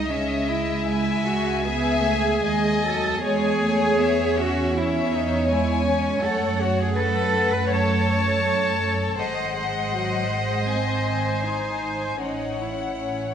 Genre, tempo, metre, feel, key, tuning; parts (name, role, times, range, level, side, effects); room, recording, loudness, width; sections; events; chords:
classical, slow romantic movement for string orchestra; 75-82 BPM; 4/4; rubato; C# minor; A4 = 442 Hz
warm chamber violin section; melody; 0.0-13.3 s; E5 to A5; -29 LUFS; left 7 dB
warm chamber violin section; second line; 0.0-13.3 s; A4 to E5; -28 LUFS; left 4 dB
dark chamber viola section; accompaniment; 0.0-13.3 s; F#3 to D#4; -28 LUFS; right 2 dB
dark chamber double bass section; bass; 0.0-13.3 s; G#1 to F#2; -27 LUFS; right 3 dB
warm chamber cello section; bass; 0.0-13.3 s; C#4 to C#5; -25 LUFS; right 2 dB
moderate concert hall reverb, RT60 2.3 s; nothing above 10.5 kHz; -20 LUFS; side -8 dB against mid
0.0-13.3 A section
0.1 C#m; 3.2 C#m/E; 6.2 F#madd11; 9.2 G#7; 12.2 A